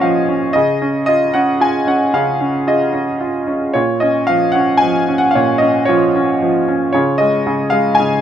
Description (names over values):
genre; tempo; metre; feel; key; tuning
classical, lyrical solo piano; 113 BPM; 3/4; rubato; unclear; A4 = 440 Hz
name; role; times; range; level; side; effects
bright concert grand piano; solo; 0.0-8.2 s; Bb2 to Ab5; -12 LUFS; equal; none
room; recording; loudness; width
light reverb; none; -13 LUFS; side -9 dB against mid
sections
0.0-8.2 A section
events
none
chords
0.0 Bbm; 0.5 Dbadd9; 3.8 Bbm; 6.9 Dbadd9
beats
0.03 | 0.55 1.07 1.60 | 2.13 2.67 3.20 | 3.75 4.29 4.83 | 5.36 5.88 6.41 | 6.94 7.46 7.99